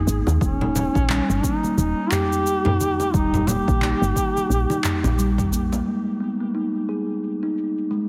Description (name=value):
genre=organic downtempo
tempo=88 BPM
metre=4/4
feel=swing 59% on 16ths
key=unclear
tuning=A4 = 440 Hz
part: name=mellow duduk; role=melody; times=0.0-5.5 s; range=C#4 to G4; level=-28 LUFS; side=equal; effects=delay
part: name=kalimba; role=arpeggios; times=0.1-8.0 s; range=G3 to G#4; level=-27 LUFS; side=equal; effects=low-pass filter, delay
part: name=woody FM bass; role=bass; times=0.1-5.8 s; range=D#1 to D#2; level=-25 LUFS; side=equal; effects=none
part: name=deep house drum kit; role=drums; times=0.1-8.1 s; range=cabasa, handclaps, toms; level=-29 LUFS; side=equal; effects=low-pass filter on perc, low-pass filter on snare, low-pass filter on toms, low-pass filter on room
part: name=bongos and congas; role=percussion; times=0.3-5.8 s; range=none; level=-30 LUFS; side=equal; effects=none
part: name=electronic kick drum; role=drums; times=0.4-5.5 s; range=none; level=-27 LUFS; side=equal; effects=none
room=light reverb, digital ambience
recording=heavily compressed radio sound, multiband compression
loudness=-22 LUFS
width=mono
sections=0.0-5.9 A section; 5.9-8.1 B section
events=filter sweep on drum 5.9-8.1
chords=0.4 D#; 5.9 G#5